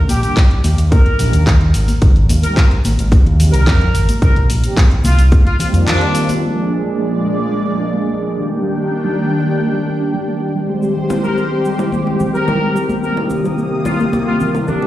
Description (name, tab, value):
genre	nu-disco, nu disco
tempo	109 BPM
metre	4/4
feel	straight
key	unclear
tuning	A4 = 438 Hz
part	overdriven fingered electric bass	bass	0.0-5.8 s	Ab1 to F2	-13 LUFS	equal	tube saturation
part	clear trumpet section	melody	0.1-6.3, 11.2-14.9 s	D4 to Bb4	-23 LUFS	equal	analog delay
part	house drum kit	drums	0.1-6.4 s	handclaps, hi-hat, shaker	-24 LUFS	left 1 dB	low-pass filter on hats, low-pass filter on snare, low-pass filter on perc, low-pass filter on room
part	congas, cabasa and bongos	percussion	0.1-6.4, 10.8-14.9 s	none	-24 LUFS	left 1 dB	none
part	warm analog pad	accompaniment	0.2-14.9 s	Eb3 to Ab4	-18 LUFS	equal	chorus, sidechain pumping, slapback echo
part	electronic kick drum	drums	0.4-5.4 s	none	-10 LUFS	equal	none
part	lush unison pad	sustained chords	6.7-14.9 s	Bb2 to Eb6	-23 LUFS	equal	chorus, phaser, sidechain pumping
part	soft round pluck	arpeggios	6.4-14.9 s	G3 to Bb4	-24 LUFS	right 2 dB	none
room	moderate plate reverb, RT60 1.5 s, digital ambience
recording	played on a big sound system in a bare room, large studio reverb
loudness	-12 LUFS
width	side -14 dB against mid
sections	0.0-6.4 A section; 6.4-14.9 B section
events	break 5.9-6.4; band accent 5.9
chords	0.0 Ebmaj7; 1.7 Abmaj7; 4.2 Cm7; 6.4 Bb7; 8.4 Ebmaj7; 10.6 Abmaj7; 13.0 Cm7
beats	0.37 0.92 1.47 | 2.02 2.57 3.12 3.67 | 4.22 4.77 5.32 5.88 | 6.42 6.98 7.53 8.08 | 8.63 9.18 9.73 10.28 | 10.83 11.38 11.93 12.48 | 13.03 13.58 14.13 14.68